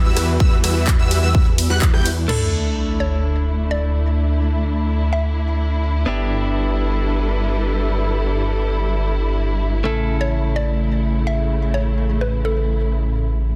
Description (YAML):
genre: EDM, festival progressive house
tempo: 127 BPM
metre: 4/4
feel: straight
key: D major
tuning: A4 = 440 Hz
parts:
  - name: muted studio string section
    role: sustained chords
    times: 0.0-13.6 s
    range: C#3 to B4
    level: -28 LUFS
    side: equal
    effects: sidechain pumping
  - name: plucky unison lead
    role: arpeggios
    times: 0.0-2.1 s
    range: E6 to G6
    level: -30 LUFS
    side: equal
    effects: ensemble chorus, sidechain pumping, digital delay
  - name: big supersaw lead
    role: riff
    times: 0.0-2.1 s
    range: G3 to G5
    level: -28 LUFS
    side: equal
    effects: sidechain pumping, low-pass filter, digital delay
  - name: detuned saw bass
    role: bass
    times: 0.0-13.6 s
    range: G1 to E2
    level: -22 LUFS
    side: equal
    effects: chorus, sidechain pumping
  - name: house drum kit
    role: drums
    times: 0.2-2.4 s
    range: crash cymbal, handclaps, hi-hat, ride cymbal, rim click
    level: -28 LUFS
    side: equal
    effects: none
  - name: electronic kick drum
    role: drums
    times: 0.4-1.9 s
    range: none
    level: -18 LUFS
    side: equal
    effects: none
  - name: mallet-like synth pluck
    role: melody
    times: 2.3-5.8, 9.9-12.9 s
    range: A4 to E5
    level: -30 LUFS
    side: equal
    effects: chorus, phaser, digital delay
  - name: direct-recorded clean electric guitar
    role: accompaniment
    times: 2.3-13.6 s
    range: C#3 to A4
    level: -30 LUFS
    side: equal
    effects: sidechain pumping, digital delay
  - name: sub drop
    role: sound effects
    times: 2.3-4.2 s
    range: none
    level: -28 LUFS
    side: equal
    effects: none
room: little or no reverb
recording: dense, heavily limited modern master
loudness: -19 LUFS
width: mono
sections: 0.0-2.3 A section; 2.3-13.6 B section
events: drop 0.0-2.3; impact 2.3-4.2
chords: 0.0 Emadd9; 2.3 Dsus2; 6.1 G6; 9.9 A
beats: | 0.40 0.88 1.35 1.82 | 2.29 2.77 3.24 3.71 | 4.18 4.65 5.13 5.60 | 6.07 6.54 7.02 7.49 | 7.96 8.43 8.91 9.38 | 9.85 10.32 10.80 11.27 | 11.74 12.21 12.69 13.16